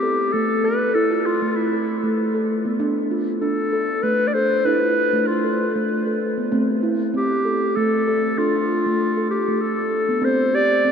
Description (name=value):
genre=world meditative, meditative tuned percussion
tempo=97 BPM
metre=3/4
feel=swing 53% on 16ths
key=D dorian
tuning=A4 = 440 Hz
part: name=mellow clarinet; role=melody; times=0.0-10.9 s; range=E4 to D5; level=-21 LUFS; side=left 1 dB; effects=ping-pong delay
part: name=steel tongue drum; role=arpeggios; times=0.0-10.9 s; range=A3 to A4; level=-21 LUFS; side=right 1 dB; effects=ping-pong delay
room=wet huge ambient reverb, RT60 7.5 s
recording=in a vast, echoing space, cassette tape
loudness=-18 LUFS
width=side -7 dB against mid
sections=0.0-10.2 A section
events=none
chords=0.0 A5; 2.8 Dm; 6.5 Am; 8.4 Dm; 10.2 C5